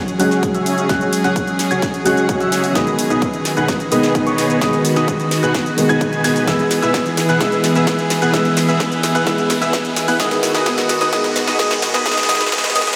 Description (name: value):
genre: EDM, festival progressive house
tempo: 129 BPM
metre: 4/4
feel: straight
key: E major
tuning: A4 = 440 Hz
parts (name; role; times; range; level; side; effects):
- felt-muted upright piano; accompaniment; 0.0-13.0 s; D#3 to G#4; -23 LUFS; equal; sidechain pumping, diffuse ambient delay
- clear studio string section; sustained chords; 0.0-13.0 s; D#3 to G#4; -24 LUFS; equal; sidechain pumping
- riser; sound effects; 6.8-13.0 s; none; -33 LUFS; equal; none
- big-room dance drum kit; drums; 0.1-13.0 s; hi-hat, shaker, snare drum; -25 LUFS; equal; high-pass filter on hats, high-pass filter on snare, high-pass filter on perc
- bright grand piano; arpeggios; 0.2-12.9 s; C#6 to G#6; -25 LUFS; equal; sidechain pumping, low-pass filter, diffuse ambient delay
- dense compressed supersaw; riff; 0.2-12.9 s; B3 to G#5; -23 LUFS; equal; sidechain pumping, low-pass filter, diffuse ambient delay
- electronic kick drum; drums; 0.4-12.6 s; none; -27 LUFS; equal; high-pass filter on kick, high-pass filter on room
room: wet huge ambient reverb, RT60 6.8 s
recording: dreamy mix soaked in reverb, high-pass filter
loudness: -17 LUFS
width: mono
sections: 0.0-13.0 A section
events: build-up 0.0-13.0; drum fill 0.0-13.0; filter sweep on supersaw synth 0.0-13.0; filter sweep on grand piano 0.0-13.0; filter sweep 0.0-13.0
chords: 0.0 F#sus2; 2.8 G#m; 6.5 E; 10.2 B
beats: 0.43 | 0.89 1.36 1.82 2.29 | 2.75 3.22 3.69 4.15 | 4.62 5.08 5.54 6.01 | 6.48 6.94 7.41 7.87 | 8.34 8.80 9.27 9.73 | 10.20 10.66 11.13 11.59 | 12.06 12.52